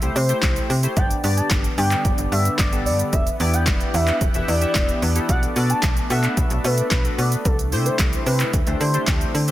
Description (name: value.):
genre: dance-pop.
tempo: 111 BPM.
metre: 4/4.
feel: straight.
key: G major.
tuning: A4 = 440 Hz.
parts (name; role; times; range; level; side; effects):
chorused polysynth; accompaniment; 0.0-9.5 s; A3 to E5; -27 LUFS; left 2 dB; sidechain pumping.
slap-like FM bass; bass; 0.0-9.5 s; E1 to D3; -22 LUFS; equal; sidechain pumping.
deep house drum kit; drums; 0.0-9.5 s; handclaps, hi-hat, kick drum, shaker, snare drum; -22 LUFS; equal; none.
expressive portamento lead; melody; 0.2-9.0 s; A4 to A5; -26 LUFS; equal; chorus, sidechain pumping, digital delay.
lush unison pad; sustained chords; 1.5-9.5 s; C3 to F#5; -30 LUFS; equal; chorus, sidechain pumping.
room: light reverb.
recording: dense, heavily limited modern master.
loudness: -18 LUFS.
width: side -14 dB against mid.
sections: 0.0-9.5 A section.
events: none.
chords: 0.0 C6; 1.0 G; 3.1 Em7; 5.3 Bm7; 7.5 C6; 8.5 D7sus4.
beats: 0.43 | 0.97 1.51 2.05 2.59 | 3.13 3.67 4.21 4.75 | 5.29 5.83 6.37 6.91 | 7.45 7.99 8.54 9.07.